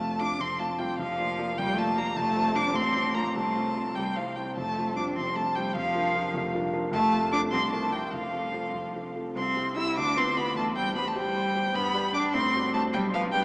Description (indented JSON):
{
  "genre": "quick classical-period movement for piano trio",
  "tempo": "101 BPM (dotted quarters)",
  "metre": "6/8",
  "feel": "straight",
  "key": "F major, C major from 9.4 s",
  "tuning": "A4 = 440 Hz",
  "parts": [
    { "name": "rich violin", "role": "melody", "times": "0.0-13.4 s", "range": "F5 to E6", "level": "-28 LUFS", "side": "equal", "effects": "none" },
    { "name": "rich cello", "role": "second line", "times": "0.0-13.4 s", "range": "F3 to E4", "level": "-30 LUFS", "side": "equal", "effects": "none" },
    { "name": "dark concert grand piano", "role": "accompaniment", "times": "0.0-13.4 s", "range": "F1 to F5", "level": "-32 LUFS", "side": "equal", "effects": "none" }
  ],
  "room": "wet cathedral reverb, RT60 6.9 s",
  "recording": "in a vast, echoing space, small speaker sound",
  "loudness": "-25 LUFS",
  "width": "side -31 dB against mid",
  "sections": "0.0-9.4 A section; 9.4-13.4 B section",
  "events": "none",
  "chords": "0.0 F; 1.0 Bb/F; 2.2 F; 2.8 F/A; 3.4 F/C; 4.0 C; 4.6 F; 5.8 Bb/F; 6.9 F; 7.5 C7; 8.1 F; 9.4 C; 10.0 Bdim/D; 10.6 C/E; 11.7 G; 12.3 F#dim/A; 12.9 G/B",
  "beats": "0.39 | 0.99 1.57 | 2.17 2.75 | 3.35 3.96 | 4.56 5.17 | 5.76 6.34 | 6.93 7.52 | 8.13 8.75 | 9.36 9.96 | 10.56 11.15 | 11.74 12.34 | 12.93"
}